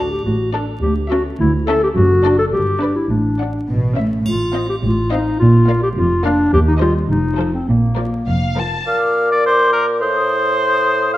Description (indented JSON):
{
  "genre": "cinematic, playful, whimsical film cue",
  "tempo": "105 BPM",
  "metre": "2/4",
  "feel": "straight",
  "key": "D major, Bb major from 4.3 s",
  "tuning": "A4 = 440 Hz",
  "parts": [
    { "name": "warm chamber violin section", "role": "melody", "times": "0.0-8.9 s", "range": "C5 to A5", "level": "-30 LUFS", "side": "left 4 dB", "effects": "none" },
    { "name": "mellow clarinet", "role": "second line", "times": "0.0-11.2 s", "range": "Bb3 to C5", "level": "-19 LUFS", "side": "left 1 dB", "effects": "none" },
    { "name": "warm chamber violin section", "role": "second line", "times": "0.0-8.8 s", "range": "A4 to E5", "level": "-30 LUFS", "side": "left 3 dB", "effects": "none" },
    { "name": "warm chamber viola section", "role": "accompaniment", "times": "0.0-8.8 s", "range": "F3 to D4", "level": "-26 LUFS", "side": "equal", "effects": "none" },
    { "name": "dark chamber double bass section", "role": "bass", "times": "0.0-8.7 s", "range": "F1 to Eb2", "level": "-20 LUFS", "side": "right 1 dB", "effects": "none" },
    { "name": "warm studio cello section", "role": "bass", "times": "0.0-8.7 s", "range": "D2 to B2", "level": "-20 LUFS", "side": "right 1 dB", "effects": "none" },
    { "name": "triangle", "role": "percussion", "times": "4.3-5.4 s", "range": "none", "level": "-35 LUFS", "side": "right 2 dB", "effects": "none" },
    { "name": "clear oboe", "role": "second line", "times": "8.9-11.2 s", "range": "Bb4 to F5", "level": "-16 LUFS", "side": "equal", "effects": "none" },
    { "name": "mellow flute section", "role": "second line", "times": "8.9-11.1 s", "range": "D6 to Eb6", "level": "-21 LUFS", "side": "left 2 dB", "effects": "none" },
    { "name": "mellow bassoon", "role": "accompaniment", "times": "8.9-11.2 s", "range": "A2 to Bb2", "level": "-19 LUFS", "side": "right 1 dB", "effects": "none" }
  ],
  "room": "wet recital hall reverb, RT60 1.4 s",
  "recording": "vinyl crackle",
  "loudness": "-14 LUFS",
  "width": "side -14 dB against mid",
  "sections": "0.0-8.9 A section; 8.9-11.2 B section",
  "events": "none",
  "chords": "0.0 D5; 0.8 A/D; 2.0 D/F#; 2.5 G; 3.1 D/A; 3.7 A; 4.3 F7/A; 5.4 Bb; 6.5 Cm/Eb; 7.1 F7; 7.7 Bb5; 8.9 Bb; 10.0 Adim"
}